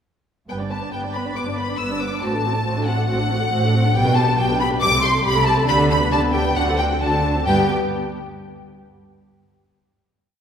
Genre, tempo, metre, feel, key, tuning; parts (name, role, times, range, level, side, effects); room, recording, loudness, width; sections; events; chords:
quick classical-period movement for string orchestra; 138 BPM; 4/4; straight; G major; A4 = 440 Hz
rich studio violin section; melody; 0.5-7.7 s; F#5 to E6; -24 LUFS; left 3 dB
warm studio violin section; second line; 0.5-7.7 s; G4 to E6; -24 LUFS; equal
rich studio viola section; accompaniment; 0.5-7.7 s; G3 to D5; -25 LUFS; equal
rich studio cello section; bass; 0.5-7.7 s; G2 to D3; -24 LUFS; right 1 dB
warm studio double bass section; bass; 0.5-7.7 s; G1 to D2; -25 LUFS; right 1 dB
wet concert hall reverb, RT60 2.3 s; heard from further back in the room; -17 LUFS; side -8 dB against mid
0.5-7.5 A section; 7.5-9.2 final chord
0.5 G; 2.2 D7/A; 4.0 G/B; 4.8 Am7/C; 5.7 G/D; 6.6 D7; 7.5 G